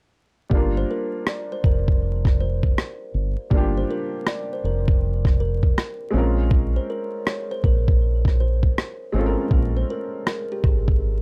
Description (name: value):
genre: lo-fi hip hop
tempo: 80 BPM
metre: 4/4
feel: swing 65% on 16ths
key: G minor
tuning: A4 = 440 Hz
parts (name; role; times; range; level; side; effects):
- felt-muted upright piano; accompaniment; 0.5-11.2 s; G3 to Bb4; -31 LUFS; equal; cassette tape, low-pass filter, plate reverb
- deep dub fingered electric bass; bass; 0.5-11.2 s; F1 to Bb1; -25 LUFS; equal; none
- boom bap sampler-style drum kit; drums; 0.5-11.0 s; kick drum, rim click; -22 LUFS; equal; none
- kalimba; melody; 0.8-11.0 s; G4 to D5; -33 LUFS; equal; low-pass filter, plate reverb
room: little or no reverb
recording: dry, gritty hardware recording, vinyl crackle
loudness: -22 LUFS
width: mono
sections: 0.5-11.2 A section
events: hi-hats muted 0.5-11.2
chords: 0.5 Gm7; 6.1 Bbm7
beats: | 0.51 1.26 2.01 2.76 | 3.51 4.26 5.01 5.76 | 6.51 7.26 8.01 8.76 | 9.51 10.26 11.01